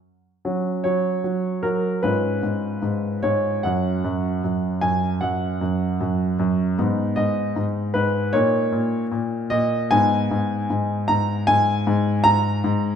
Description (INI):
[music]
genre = classical-period piano sonatina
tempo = 77 BPM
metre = 4/4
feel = rubato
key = F# major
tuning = A4 = 437 Hz
[part]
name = clear grand piano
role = solo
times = 0.4-13.0 s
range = F#2 to A#5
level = -19 LUFS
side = equal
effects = none
[sound]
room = moderate recital hall reverb, RT60 1.4 s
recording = none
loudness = -19 LUFS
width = side -8 dB against mid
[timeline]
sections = 0.4-13.0 A section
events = none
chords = 0.4 F#5; 2.0 C#7/G#; 3.6 F#5; 6.8 G#m; 8.3 D#5/A#; 9.9 G#m